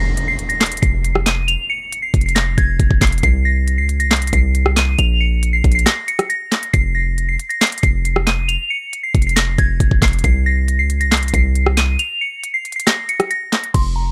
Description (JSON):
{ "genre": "hip hop, trap", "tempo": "137 BPM", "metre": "4/4", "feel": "half-time", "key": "F minor", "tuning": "A4 = 440 Hz", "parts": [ { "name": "soft synth bell", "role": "melody", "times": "0.0-14.1 s", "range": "Bb5 to F7", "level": "-22 LUFS", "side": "equal", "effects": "chorus, low-pass filter" }, { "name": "hard-hitting 808-style bass", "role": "bass", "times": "0.0-14.1 s", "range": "F1 to Db2", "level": "-20 LUFS", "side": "equal", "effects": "none" }, { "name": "impact", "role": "sound effects", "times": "0.0-1.5 s", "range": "none", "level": "-31 LUFS", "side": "equal", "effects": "none" }, { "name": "trap drum kit", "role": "drums", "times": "0.2-13.8 s", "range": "crash cymbal, handclaps, hi-hat, kick drum, rim click, snare drum", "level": "-19 LUFS", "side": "equal", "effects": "none" } ], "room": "little or no reverb", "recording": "dry, gritty hardware recording", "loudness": "-17 LUFS", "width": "mono", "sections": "0.0-13.7 A section", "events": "impact 0.0-1.5; break 5.9-6.7, 12.0-13.7", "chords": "0.0 F5; 3.2 C7(no3); 5.0 Bbm; 6.7 F5; 10.2 C7(no3); 12.0 N.C." }